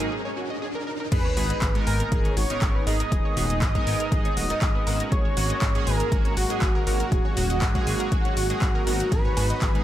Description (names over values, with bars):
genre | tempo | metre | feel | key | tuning
progressive house | 120 BPM | 4/4 | straight | unclear | A4 = 441 Hz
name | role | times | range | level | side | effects
wide unison lead | melody | 0.0-9.8 s | D#4 to D#5 | -30 LUFS | right 1 dB | digital delay
supersaw pad | sustained chords | 0.0-9.8 s | G#3 to F#4 | -36 LUFS | equal | sidechain pumping
wide unison pluck | arpeggios | 0.0-9.8 s | G#3 to G#6 | -34 LUFS | equal | cassette tape, sidechain pumping, digital delay
chorused polysynth | stabs | 0.0-9.8 s | G#2 to A#4 | -32 LUFS | right 2 dB | sidechain pumping
deep house drum kit | drums | 0.0-9.8 s | crash cymbal, handclaps, hi-hat, ride cymbal | -32 LUFS | left 1 dB | overdrive
riser and sub drop | sound effects | 0.0-3.1 s | none | -33 LUFS | equal | none
airy dreamy lead | second line | 1.1-9.8 s | F#5 to D#6 | -35 LUFS | equal | chorus, cassette tape, sidechain pumping, digital delay
dark detuned saw bass | bass | 1.1-9.8 s | D#1 to G#1 | -28 LUFS | equal | sidechain pumping
electronic kick drum | drums | 1.1-9.7 s | none | -25 LUFS | equal | overdrive
congas and woodblock | percussion | 9.2-9.8 s | none | -41 LUFS | right 2 dB | none
room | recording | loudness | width
little or no reverb | none | -21 LUFS | side -12 dB against mid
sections
0.0-1.1 A section; 1.1-9.8 B section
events
build-up 0.0-1.1; riser 0.0-1.1; break 0.1-1.1; drop 1.1-9.8; impact 1.1-3.1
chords
0.0 D#m/G#; 1.1 F#add9